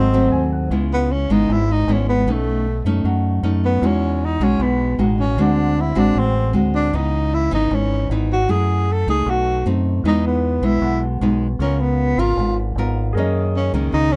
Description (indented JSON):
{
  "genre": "bossa nova",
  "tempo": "154 BPM",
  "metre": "4/4",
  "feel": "straight",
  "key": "C# minor",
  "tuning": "A4 = 441 Hz",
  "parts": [
    { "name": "breathy tenor saxophone", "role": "melody", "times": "0.0-14.2 s", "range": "A3 to A4", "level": "-23 LUFS", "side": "equal", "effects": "none" },
    { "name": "nylon-string guitar", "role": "accompaniment", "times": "0.0-14.2 s", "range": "F#2 to A#4", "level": "-23 LUFS", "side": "equal", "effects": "none" },
    { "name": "warm grand piano", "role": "accompaniment", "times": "0.0-0.7, 13.1-14.2 s", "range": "F#4 to G#5", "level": "-29 LUFS", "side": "equal", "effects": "none" },
    { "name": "deep dub fingered electric bass", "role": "bass", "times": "0.0-14.2 s", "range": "G#1 to F#2", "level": "-23 LUFS", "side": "equal", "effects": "none" }
  ],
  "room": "moderate booth ambience, RT60 0.2 s",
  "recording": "dark, warm production, nothing above 10.9 kHz",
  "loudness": "-19 LUFS",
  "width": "mono",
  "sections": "0.7-14.2 A section",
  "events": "grand piano fill 0.1-0.7; tenor saxophone solo 0.7-14.2",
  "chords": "0.0 G#7b9; 0.7 C#m7; 2.3 B9; 3.8 Emaj9; 5.4 D7#11; 6.9 C#m9; 8.5 F#m9; 9.3 B7b9; 10.0 Emaj7; 11.6 C#6; 13.1 F#6"
}